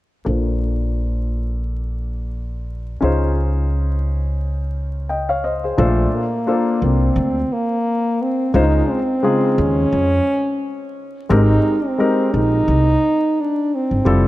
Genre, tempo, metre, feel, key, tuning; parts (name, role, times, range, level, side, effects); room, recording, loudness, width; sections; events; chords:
hip hop, jazz-hop; 87 BPM; 4/4; swing 57% on 16ths; A4 = 439 Hz
warm concert grand piano; accompaniment; 0.2-14.3 s; Bb2 to G5; -21 LUFS; left 2 dB; low-pass filter
upright bass; bass; 0.3-14.3 s; F1 to F2; -19 LUFS; equal
mellow French horn; melody; 5.8-14.3 s; A3 to Eb4; -18 LUFS; right 1 dB; analog delay
moderate plate reverb, RT60 3.4 s; dark, warm production, vinyl crackle; -16 LUFS; side -16 dB against mid
0.3-5.8 A section; 5.8-14.3 B section
filter sweep on grand piano 0.3-5.8
0.3 Bbmaj9; 3.0 Dbmaj9; 5.8 Bbmaj9; 8.5 Dbmaj9; 11.3 Abmaj9